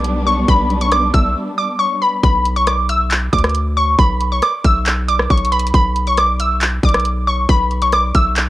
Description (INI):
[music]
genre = hip hop, trap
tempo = 137 BPM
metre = 4/4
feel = half-time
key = B minor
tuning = A4 = 440 Hz
[part]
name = glassy wavetable pluck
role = melody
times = 0.0-8.4 s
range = B5 to E6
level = -16 LUFS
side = equal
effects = chorus, low-pass filter, cassette tape
[part]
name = warm studio string section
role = sustained chords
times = 0.0-2.2 s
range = G3 to D4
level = -22 LUFS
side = equal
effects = cassette tape
[part]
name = long sustained 808-style bass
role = bass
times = 0.0-8.5 s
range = B1 to D2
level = -19 LUFS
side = equal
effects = none
[part]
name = trap drum kit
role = drums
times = 0.0-8.5 s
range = handclaps, hi-hat, kick drum, rim click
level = -16 LUFS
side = equal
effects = cassette tape
[sound]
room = light reverb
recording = home recording on cassette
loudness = -13 LUFS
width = side -15 dB against mid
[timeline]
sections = 0.0-2.2 A section; 2.2-8.5 A section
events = break 1.4-2.2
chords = 0.0 G/B; 2.2 Bm